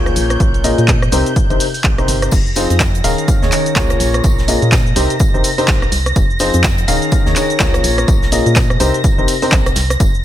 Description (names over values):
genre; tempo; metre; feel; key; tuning
piano house; 125 BPM; 4/4; swing 59% on 16ths; unclear; A4 = 438 Hz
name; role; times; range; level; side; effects
dark studio violin section; sustained chords; 0.0-10.2 s; G6 to Bb6; -24 LUFS; right 2 dB; vintage 12-bit sampler grit, sidechain pumping
clear upright piano; riff; 0.0-9.7 s; Bb2 to F5; -18 LUFS; left 2 dB; sidechain pumping, digital delay
organ-like FM bass; bass; 0.0-10.2 s; Eb1 to Bb2; -18 LUFS; equal; sidechain pumping
punchy analog drum machine; drums; 0.1-10.2 s; cabasa, crash cymbal, handclaps, hi-hat, rim click; -19 LUFS; equal; none
electronic kick drum; drums; 0.4-10.1 s; none; -15 LUFS; equal; none
crisp fusion drum kit; drums; 2.3-10.1 s; hi-hat, snare drum, tambourine; -30 LUFS; left 1 dB; none
room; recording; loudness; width
small room ambience; none; -11 LUFS; side -12 dB against mid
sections
0.0-10.2 A section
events
none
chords
0.2 Bbm7; 1.1 Cm7; 2.3 Fm7; 3.0 Eb7sus4; 4.0 Bbm7; 5.0 Cm7; 6.2 Fm7; 6.9 Eb7sus4; 7.8 Bbm7; 8.8 Cm7